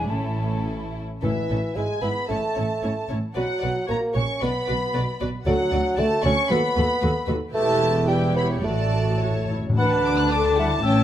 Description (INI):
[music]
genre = quick classical-period movement for symphony orchestra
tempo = 104-117 BPM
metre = 2/4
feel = rubato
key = A major, D major from 5.5 s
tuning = A4 = 440 Hz
[part]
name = dark studio violin section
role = melody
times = 0.0-11.0 s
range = A4 to A5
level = -34 LUFS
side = left 5 dB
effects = none
[part]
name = dark studio violin section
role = second line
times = 0.0-11.0 s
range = E4 to F#6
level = -29 LUFS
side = left 1 dB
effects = none
[part]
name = hollow concert flute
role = second line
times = 0.0-0.7, 9.8-11.0 s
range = C#5 to B5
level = -29 LUFS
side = left 2 dB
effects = none
[part]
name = warm studio viola section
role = accompaniment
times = 0.0-11.0 s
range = C#4 to C#5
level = -31 LUFS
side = equal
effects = none
[part]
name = dark studio cello section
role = bass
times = 0.0-11.0 s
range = D2 to D3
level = -28 LUFS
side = right 1 dB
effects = none
[part]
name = warm studio double bass section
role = bass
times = 0.0-11.0 s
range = E1 to D#2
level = -28 LUFS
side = right 2 dB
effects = none
[part]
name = mellow bassoon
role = accompaniment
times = 1.2-9.5 s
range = E3 to C#4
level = -25 LUFS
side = right 1 dB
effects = none
[part]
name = timpani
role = percussion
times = 1.2-1.7, 5.5-6.2, 9.2-9.8 s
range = A2 to D3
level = -28 LUFS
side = left 2 dB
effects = none
[part]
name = warm clarinet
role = second line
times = 9.8-11.0 s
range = E3 to D4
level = -29 LUFS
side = left 2 dB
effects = none
[part]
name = warm oboe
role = second line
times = 9.8-11.0 s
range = D5 to F#5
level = -29 LUFS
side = right 1 dB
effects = none
[part]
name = mellow French horn section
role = sustained chords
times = 9.8-11.0 s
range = C#4 to B4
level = -23 LUFS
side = left 1 dB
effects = none
[sound]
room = moderate recital hall reverb, RT60 1.6 s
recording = close, detailed microphones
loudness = -20 LUFS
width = side -11 dB against mid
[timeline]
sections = 0.0-1.2 A section; 1.2-9.8 B section; 9.8-11.0 A section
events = timpani fill 9.2-9.8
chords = 0.1 A; 1.8 E/G#; 2.3 A; 3.4 B5; 3.9 F#/A#; 4.4 Bm; 5.5 D; 6.5 B7/D#; 7.5 Em; 8.7 D/A; 9.2 A; 9.8 D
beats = | 0.09 0.67 | 1.23 1.77 | 2.30 2.83 | 3.36 3.90 | 4.43 4.95 | 5.47 5.99 | 6.51 7.03 | 7.54 8.09 | 8.65 9.22 | 9.78 10.32 | 10.84